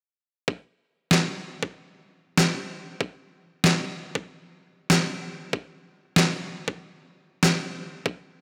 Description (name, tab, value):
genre	glitch hop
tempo	95 BPM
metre	4/4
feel	swing 63% on 16ths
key	none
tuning	none
part	electronic kick drum	drums	0.5-8.2 s	none	-29 LUFS	equal	high-pass filter on kick, small room ambience
part	electronic snare drum	drums	1.1-7.6 s	none	-24 LUFS	equal	small room ambience
room	moderate lush hall reverb, RT60 2.2 s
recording	none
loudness	-26 LUFS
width	mono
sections	0.5-8.4 A section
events	none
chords	none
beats	| 0.48 1.11 1.74 2.37 | 3.01 3.64 4.27 4.90 | 5.53 6.16 6.79 7.43 | 8.06